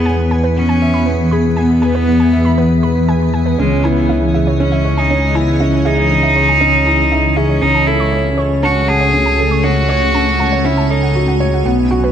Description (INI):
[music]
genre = piano and strings electronica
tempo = 119 BPM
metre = 4/4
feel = straight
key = unclear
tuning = A4 = 440 Hz
[part]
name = rich cello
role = melody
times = 0.0-11.4 s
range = G#3 to G#4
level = -16 LUFS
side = equal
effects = digital delay
[part]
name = granular cloud pad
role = sustained chords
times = 0.0-12.1 s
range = E3 to G#5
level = -20 LUFS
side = left 2 dB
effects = built-in reverb
[part]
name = felt-muted upright piano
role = riff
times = 0.0-12.1 s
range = B3 to F#5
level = -17 LUFS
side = right 1 dB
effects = digital delay
[part]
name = dark detuned saw bass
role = bass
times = 0.0-12.1 s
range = B1 to E2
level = -16 LUFS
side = equal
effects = none
[part]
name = warbly dusty pluck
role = arpeggios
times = 0.1-12.1 s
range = B4 to C#6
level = -25 LUFS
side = right 5 dB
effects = chorus, digital delay
[sound]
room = light reverb, small room ambience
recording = none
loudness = -11 LUFS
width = side -9 dB against mid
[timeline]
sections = 0.0-12.1 A section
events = none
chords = 0.0 E; 3.6 C#madd9; 7.6 F#m/C#